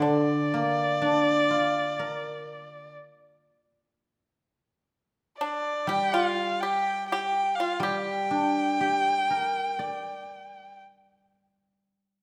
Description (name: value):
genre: chinese traditional, Chinese chamber ensemble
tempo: 61 BPM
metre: 4/4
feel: rubato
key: G yu mode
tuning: A4 = 442 Hz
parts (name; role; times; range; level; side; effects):
- rich erhu; melody; 0.0-10.8 s; D5 to G5; -30 LUFS; equal; none
- pipa; second line; 0.0-10.8 s; D4 to G4; -32 LUFS; equal; none
- guzheng; accompaniment; 0.0-11.8 s; D3 to D5; -31 LUFS; equal; none
room: moderate recital hall reverb, RT60 1.5 s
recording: none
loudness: -26 LUFS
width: mono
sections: 0.0-11.8 A section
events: none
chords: none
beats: | 0.01 1.01 1.99 2.97 | 3.94 4.91 5.88 6.84 | 7.82 8.80 9.80 10.82